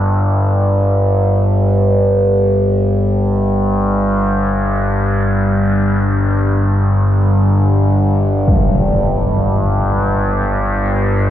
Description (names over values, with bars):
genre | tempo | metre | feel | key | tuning
dark ambient drone | free time | none | none | unclear | A4 = 441 Hz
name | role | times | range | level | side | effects
overtone-sweeping drone | drone | 0.0-11.3 s | G1 to G2 | -12 LUFS | equal | chorus, built-in reverb
quartz singing bowl | texture | 0.0-11.3 s | D5 | -32 LUFS | right 1 dB | none
impact | percussion | 8.5-8.7 s | none | -18 LUFS | equal | low-pass filter on sfx
room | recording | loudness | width
wet cathedral reverb, RT60 5.0 s | worn, warbling old tape, cassette tape, warbly pitch drift | -12 LUFS | side -11 dB against mid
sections
0.0-11.3 A section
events
none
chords
0.0 G5